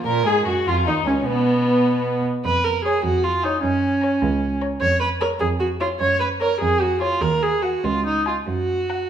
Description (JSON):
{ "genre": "quick classical-period movement for string quartet", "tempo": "100 BPM (dotted quarters)", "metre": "6/8", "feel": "rubato", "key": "F# major", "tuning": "A4 = 440 Hz", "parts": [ { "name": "dark violin", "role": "second line", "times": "0.0-9.1 s", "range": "B3 to G#5", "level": "-26 LUFS", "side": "left 4 dB", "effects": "none" }, { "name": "rich viola", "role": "accompaniment", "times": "0.0-9.1 s", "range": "B3 to C#5", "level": "-20 LUFS", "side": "right 2 dB", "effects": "none" }, { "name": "warm cello", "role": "bass", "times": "0.0-9.0 s", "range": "C#2 to B2", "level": "-24 LUFS", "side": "right 3 dB", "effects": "none" }, { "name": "warm violin", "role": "melody", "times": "0.1-9.1 s", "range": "B3 to B5", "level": "-30 LUFS", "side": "left 9 dB", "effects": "none" } ], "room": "moderate recital hall reverb, RT60 1.3 s", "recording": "none", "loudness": "-18 LUFS", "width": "side -9 dB against mid", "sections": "0.1-9.1 A section", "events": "none", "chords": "0.1 F#; 1.3 N.C.; 2.5 C#/E#; 3.6 F#; 4.8 C#7/E#; 6.0 F#; 6.6 C#/E#; 7.2 D#m; 7.8 C#5; 8.5 F#", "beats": "| 0.06 0.67 | 1.26 1.85 | 2.45 3.04 | 3.63 4.22 | 4.82 5.41 | 6.01 6.61 | 7.22 7.84 | 8.48" }